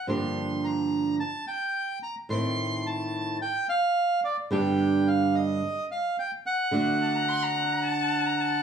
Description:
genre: tango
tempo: 108 BPM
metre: 4/4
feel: rubato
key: G minor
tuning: A4 = 441 Hz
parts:
  - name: bandoneon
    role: melody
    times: 0.0-8.6 s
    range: D5 to C6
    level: -28 LUFS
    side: right 1 dB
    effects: none
  - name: flamenco guitar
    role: accompaniment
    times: 0.1-8.6 s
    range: G2 to G4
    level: -26 LUFS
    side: right 3 dB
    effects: none
  - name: rich violin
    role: second line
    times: 7.0-8.6 s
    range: A5 to C6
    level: -29 LUFS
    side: left 4 dB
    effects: none
room: wet large studio reverb, RT60 0.9 s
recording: band playing live in one room, small room ambience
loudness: -24 LUFS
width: side -7 dB against mid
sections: 0.0-8.6 A section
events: none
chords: 0.1 Gm7; 1.2 N.C.; 2.3 Adim; 3.4 N.C.; 4.5 G; 5.6 N.C.; 6.7 D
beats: | 0.08 0.63 1.19 1.75 | 2.30 2.85 3.41 3.96 | 4.52 5.07 5.62 6.18 | 6.73 7.29 7.84 8.40

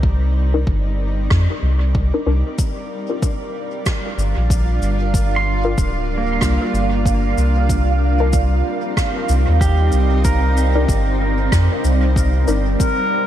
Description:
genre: ambient dub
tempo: 94 BPM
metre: 4/4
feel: swing 60% on 16ths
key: C minor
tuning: A4 = 440 Hz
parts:
  - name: granular cloud pad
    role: sustained chords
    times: 0.0-13.3 s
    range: G3 to D5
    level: -24 LUFS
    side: equal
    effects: built-in reverb
  - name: soft dub sub bass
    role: bass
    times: 0.0-12.8 s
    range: D1 to F2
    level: -17 LUFS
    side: equal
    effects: none
  - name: electronic kick drum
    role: drums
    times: 0.0-13.0 s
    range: none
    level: -19 LUFS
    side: equal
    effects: overdrive
  - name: filtered dub chord stab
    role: stabs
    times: 0.5-12.6 s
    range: D4 to Bb4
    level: -28 LUFS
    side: left 5 dB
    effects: analog chorus, dub echo
  - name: rim click and cabasa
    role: drums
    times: 1.3-13.0 s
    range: none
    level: -29 LUFS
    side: equal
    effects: dub echo
  - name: bubbling stepped-filter texture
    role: texture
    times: 3.5-12.8 s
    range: F5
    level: -29 LUFS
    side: right 11 dB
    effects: chorus, built-in reverb
  - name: pedal steel guitar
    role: arpeggios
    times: 5.4-11.8 s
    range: Bb3 to C6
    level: -25 LUFS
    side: right 3 dB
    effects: dub echo
  - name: trumpet with bucket mute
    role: melody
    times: 12.8-13.3 s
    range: Bb4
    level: -18 LUFS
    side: left 3 dB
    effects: none
room: little or no reverb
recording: none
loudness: -15 LUFS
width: side -11 dB against mid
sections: 0.0-12.8 A section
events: fade-in on ambient pad 0.0-12.8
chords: 0.0 Cm9; 2.6 Gm7; 7.7 Cm9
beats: | 0.03 0.67 1.31 1.95 | 2.59 3.22 3.86 4.50 | 5.14 5.78 6.42 7.05 | 7.69 8.33 8.97 9.61 | 10.24 10.88 11.52 12.16 | 12.80

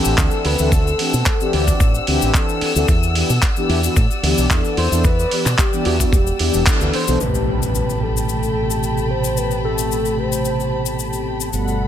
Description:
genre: nu-disco, nu disco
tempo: 111 BPM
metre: 4/4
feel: swing 54% on 16ths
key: A dorian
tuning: A4 = 439 Hz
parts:
  - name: soft octave-layered synth lead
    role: melody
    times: 0.0-11.3 s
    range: F#4 to D5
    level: -25 LUFS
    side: equal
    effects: chorus, vintage 12-bit sampler grit, tape echo
  - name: mellow synth brass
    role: accompaniment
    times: 0.0-11.9 s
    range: B2 to F#5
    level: -22 LUFS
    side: left 1 dB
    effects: chorus, tape echo
  - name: muted studio violin section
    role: sustained chords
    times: 0.0-11.9 s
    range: C4 to E6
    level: -27 LUFS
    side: left 2 dB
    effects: sidechain pumping
  - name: cabasa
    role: percussion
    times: 0.0-11.8 s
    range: none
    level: -27 LUFS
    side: left 14 dB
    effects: none
  - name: fingered electric bass with an envelope filter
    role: bass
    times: 0.1-11.9 s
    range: E1 to B2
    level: -21 LUFS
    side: equal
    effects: none
  - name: dusty soul sampler-style drum kit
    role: drums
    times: 0.2-7.3 s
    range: crash cymbal, handclaps, hi-hat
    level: -23 LUFS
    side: right 2 dB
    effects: low-pass filter on hats, low-pass filter on snare, low-pass filter on cymbals, low-pass filter on room
  - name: electronic kick drum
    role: drums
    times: 0.2-6.8 s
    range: none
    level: -17 LUFS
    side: equal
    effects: none
  - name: impact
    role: sound effects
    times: 7.2-9.4 s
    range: none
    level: -28 LUFS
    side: equal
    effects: none
room: light reverb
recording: none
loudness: -15 LUFS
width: side -10 dB against mid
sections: 0.0-7.2 A section; 7.2-11.9 B section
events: band accent 6.7; impact 7.2-9.4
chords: 0.0 D9sus4; 2.9 Em7; 7.2 Am9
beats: 0.18 | 0.72 1.26 1.80 2.34 | 2.88 3.42 3.96 4.50 | 5.04 5.59 6.13 6.67 | 7.21 7.75 8.29 8.83 | 9.37 9.91 10.45 10.99 | 11.53

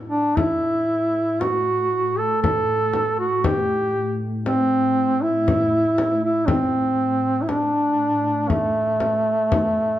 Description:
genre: caucasian folk, Caucasian lament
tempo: 59 BPM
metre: 3/4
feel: rubato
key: A dorian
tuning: A4 = 439 Hz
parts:
  - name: glassy FM pad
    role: drone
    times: 0.0-10.0 s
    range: A2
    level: -29 LUFS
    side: left 1 dB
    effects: ensemble chorus, built-in reverb
  - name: mellow duduk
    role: melody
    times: 0.1-10.0 s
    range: A3 to A4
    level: -19 LUFS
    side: right 1 dB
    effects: none
  - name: frame drum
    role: percussion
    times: 0.4-9.8 s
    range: none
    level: -25 LUFS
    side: left 3 dB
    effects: none
room: moderate recital hall reverb, RT60 1.5 s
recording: dark, warm production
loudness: -18 LUFS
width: side -13 dB against mid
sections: 0.0-10.0 A section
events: none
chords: none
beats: 0.37 1.42 | 2.44 3.45 4.46 | 5.48 6.48 7.48 | 8.49 9.51

